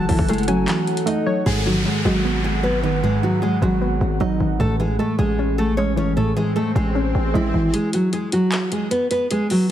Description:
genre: hip hop, trap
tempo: 153 BPM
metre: 4/4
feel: half-time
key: G# phrygian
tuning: A4 = 440 Hz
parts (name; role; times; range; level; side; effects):
- nylon-string guitar; melody; 0.0-9.7 s; E3 to D#5; -21 LUFS; equal; digital delay
- warbly dusty pluck; second line; 0.0-1.5 s; C#5 to A5; -29 LUFS; left 1 dB; chorus, digital delay
- soft round pluck; accompaniment; 0.0-7.7 s; G#2 to C#4; -23 LUFS; right 1 dB; chorus
- deep dark ambient pad; sustained chords; 0.0-7.7 s; G#4 to C#6; -30 LUFS; equal; chorus, built-in reverb
- distorted 808-style bass; bass; 0.0-7.7 s; F#1 to A1; -23 LUFS; equal; distortion
- trap drum kit; drums; 0.1-1.2, 7.7-9.6 s; handclaps, hi-hat, kick drum; -25 LUFS; left 1 dB; vintage 12-bit sampler grit
- downlifter and swell; sound effects; 1.5-7.7 s; none; -29 LUFS; left 1 dB; none
room: light reverb, digital ambience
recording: heavily compressed radio sound, multiband compression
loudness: -18 LUFS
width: side -11 dB against mid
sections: 0.0-1.5 A section; 1.5-7.7 B section; 7.7-9.7 C section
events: kick muted 0.7-1.5, 7.7-9.7; swell 6.4-7.7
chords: 0.0 F#m7; 1.5 G#m7; 4.6 Amaj7; 7.7 G#m7

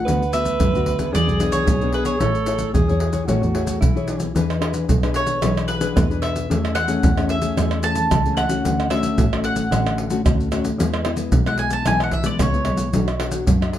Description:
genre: samba and choro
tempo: 112 BPM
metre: 4/4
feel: straight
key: unclear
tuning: A4 = 440 Hz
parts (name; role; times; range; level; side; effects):
- mandolin; melody; 0.0-13.4 s; B4 to A5; -24 LUFS; equal; none
- nylon-string guitar; accompaniment; 0.0-13.8 s; A2 to C#5; -24 LUFS; left 4 dB; none
- breathy tenor saxophone; second line; 0.1-4.3 s; E4 to B4; -25 LUFS; right 4 dB; none
- bright double bass; bass; 0.1-13.8 s; A1 to F#2; -24 LUFS; equal; none
- maracas, surdo, pandeiro and tamborim; percussion; 0.1-13.8 s; none; -22 LUFS; right 1 dB; none
room: moderate studio reverb, RT60 0.5 s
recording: dark, warm production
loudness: -17 LUFS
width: side -11 dB against mid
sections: 0.0-4.4 A section; 4.4-13.8 B section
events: mandolin solo 4.4-13.8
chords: 0.1 Bm7/D; 1.1 E7; 2.2 Amaj7; 4.4 E7; 6.5 Amaj7/E; 8.6 Dmaj7; 10.8 E; 12.9 Bm

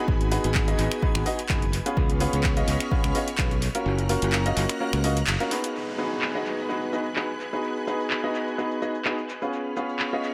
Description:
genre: piano house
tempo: 127 BPM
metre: 4/4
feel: swing 54% on 16ths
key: G# dorian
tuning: A4 = 443 Hz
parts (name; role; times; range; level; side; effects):
- analog string pad; sustained chords; 0.0-10.3 s; B4 to G#6; -39 LUFS; equal; ensemble chorus, sidechain pumping
- clear upright piano; riff; 0.0-10.3 s; A#3 to D#5; -30 LUFS; equal; sidechain pumping, low-pass filter, dub echo
- modern bright fingered electric bass; bass; 0.1-5.4 s; F#1 to C#2; -29 LUFS; equal; tube saturation, sidechain pumping
- electronic kick drum; drums; 0.1-3.5 s; none; -28 LUFS; equal; none
- punchy analog drum machine; drums; 0.2-10.3 s; cabasa, finger snaps, handclaps, hi-hat; -33 LUFS; equal; low-pass filter on hats, low-pass filter on snare, low-pass filter on perc, low-pass filter on room, dub echo
- downlifter; sound effects; 5.7-9.5 s; none; -43 LUFS; equal; none
room: light reverb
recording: echo-heavy mix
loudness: -26 LUFS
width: mono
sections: 0.0-5.7 A section; 5.7-10.3 B section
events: kick drops out 3.9-5.7; band accent 5.3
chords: 0.0 G#m7; 2.0 C#7; 3.9 F#maj7; 5.7 G#m7; 9.5 C#7

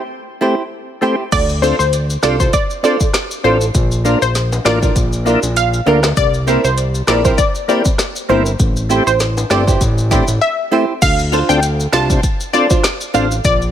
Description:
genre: dancehall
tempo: 99 BPM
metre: 4/4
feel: swing 56% on 16ths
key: D minor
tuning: A4 = 440 Hz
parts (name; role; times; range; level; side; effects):
- tonewheel organ; accompaniment; 0.4-13.3 s; A3 to C5; -20 LUFS; left 2 dB; chorus vibrato, slow rotary speaker, sidechain pumping
- flamenco guitar; arpeggios; 0.4-13.3 s; C4 to C5; -20 LUFS; right 5 dB; none
- analog pluck; melody; 1.3-13.6 s; C5 to A5; -18 LUFS; left 1 dB; chorus, digital delay
- fat analog bass; bass; 1.3-13.7 s; G1 to D2; -17 LUFS; equal; none
- afro-pop drum kit; drums; 1.3-13.6 s; crash cymbal, hi-hat, kick drum, rim click, snare drum; -17 LUFS; equal; none
- maracas and timbales; percussion; 1.3-13.7 s; none; -26 LUFS; left 3 dB; none
room: light reverb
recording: none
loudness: -12 LUFS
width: side -10 dB against mid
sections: 0.0-1.3 A section; 1.3-11.0 B section; 11.0-13.7 C section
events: break 0.0-1.3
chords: 0.0 Am7; 1.3 Dm7; 3.7 Bb; 6.2 C7; 8.6 Am7; 11.0 Dm7

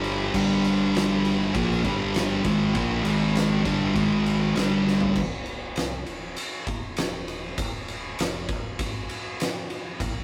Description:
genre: stoner and doom metal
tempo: 99 BPM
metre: 4/4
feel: straight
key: unclear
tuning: A4 = 440 Hz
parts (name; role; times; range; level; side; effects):
- thick fuzz guitar; riff; 0.0-5.2 s; G2 to Bb3; -27 LUFS; equal; distortion
- thick fuzz guitar; riff; 0.0-5.2 s; G2 to Bb3; -27 LUFS; equal; distortion
- sub bass with octave; bass; 0.0-10.2 s; D1 to C2; -41 LUFS; equal; overdrive
- oversized low-tuned drum kit; drums; 0.0-10.1 s; crash cymbal, kick drum, ride cymbal, snare drum, toms; -31 LUFS; equal; none
room: light reverb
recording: rough rehearsal-room recording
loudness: -25 LUFS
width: mono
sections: 0.0-5.2 A section; 5.2-10.2 B section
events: drum fill 4.9-5.2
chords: 0.0 G5; 3.0 G#5; 3.6 G5; 4.0 G#5; 4.6 G5; 5.2 Csus2/D; 7.0 N.C.; 7.6 Dm

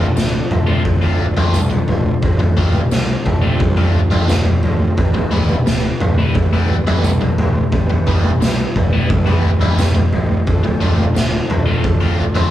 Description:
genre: psychedelic rock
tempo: 87 BPM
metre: 4/4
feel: straight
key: D dorian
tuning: A4 = 440 Hz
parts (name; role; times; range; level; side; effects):
- tonewheel organ; sustained chords; 0.0-12.5 s; E3 to C5; -25 LUFS; right 3 dB; slow rotary speaker, chorus vibrato
- crunchy overdriven guitar; riff; 0.0-12.5 s; D3 to F4; -23 LUFS; left 1 dB; phaser
- fuzz picked electric bass; bass; 0.0-12.4 s; D1 to C2; -23 LUFS; equal; overdrive
- raw garage drum kit; drums; 0.2-12.5 s; kick drum, snare drum, toms; -14 LUFS; equal; none
- tambourine; percussion; 0.2-11.3 s; none; -36 LUFS; left 6 dB; none
room: light reverb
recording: band playing live in one room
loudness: -13 LUFS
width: side -13 dB against mid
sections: 0.0-12.5 A section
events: none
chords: 0.0 Dm7; 5.0 Em/D; 10.5 Dm7

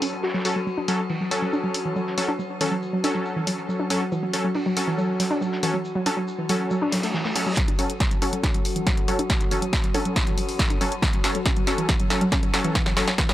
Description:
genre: driving peak-time techno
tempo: 139 BPM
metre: 4/4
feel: straight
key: F# minor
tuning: A4 = 441 Hz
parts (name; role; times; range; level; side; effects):
- warbly dusty pluck; riff; 0.0-13.3 s; E3 to F#4; -27 LUFS; equal; chorus, sidechain pumping, tape echo
- supersaw stab; stabs; 0.0-13.1 s; F#3 to A4; -28 LUFS; left 1 dB; sidechain pumping, low-pass filter, analog delay
- metallic inharmonic drone; drone; 0.0-13.3 s; F#3 to F#4; -31 LUFS; left 1 dB; chorus, built-in reverb, sidechain pumping
- cloth-damped thuddy drum kit; drums; 0.0-7.5 s; hi-hat, shaker, snare drum; -38 LUFS; right 1 dB; sidechain pumping on hats, high-pass filter on hats, low-pass filter on hats, high-pass filter on snare, low-pass filter on snare, sidechain pumping on perc, high-pass filter on perc, low-pass filter on perc, high-pass filter on room, low-pass filter on room
- punchy analog drum machine; drums; 0.0-13.3 s; hi-hat, snare drum; -27 LUFS; equal; high-pass filter on hats, low-pass filter on hats, high-pass filter on snare, low-pass filter on snare, high-pass filter on room, low-pass filter on room
- reverse cymbal; sound effects; 6.8-7.6 s; none; -33 LUFS; right 1 dB; none
- electronic kick drum; drums; 7.6-13.3 s; none; -24 LUFS; equal; none
room: small room ambience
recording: dry, gritty hardware recording, transformer saturation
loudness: -21 LUFS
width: side -14 dB against mid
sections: 0.0-7.6 A section; 7.6-13.3 B section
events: filter sweep on synth arpeggio sound 0.0-7.6, 7.6-13.3; reverse cymbal 6.8-7.6; build-up 7.6-13.3; drum fill 7.6-13.3; filter sweep on supersaw synth 7.6-13.3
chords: 0.0 F#m

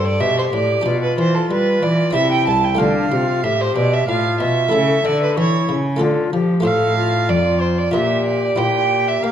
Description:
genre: classical, baroque-style sonata movement with continuo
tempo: 93 BPM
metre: 3/4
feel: straight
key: unclear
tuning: A4 = 440 Hz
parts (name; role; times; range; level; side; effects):
- tenor recorder; melody; 0.0-9.3 s; D4 to A4; -22 LUFS; left 7 dB; none
- dark violin; second line; 0.0-9.3 s; A4 to A5; -19 LUFS; right 4 dB; none
- buff-stop harpsichord; accompaniment; 0.0-9.3 s; C2 to C5; -23 LUFS; left 1 dB; none
- warm cello; bass; 0.0-9.3 s; C2 to Bb3; -20 LUFS; right 1 dB; none
room: wet recital hall reverb, RT60 1.3 s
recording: none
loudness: -15 LUFS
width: side -9 dB against mid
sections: 0.0-9.3 A section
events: none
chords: 0.0 C; 0.9 G/B; 2.2 C; 2.8 Dm; 4.7 A/C#; 6.0 Dm; 6.6 F/A; 7.9 Gm7/Bb; 8.6 C7/Bb

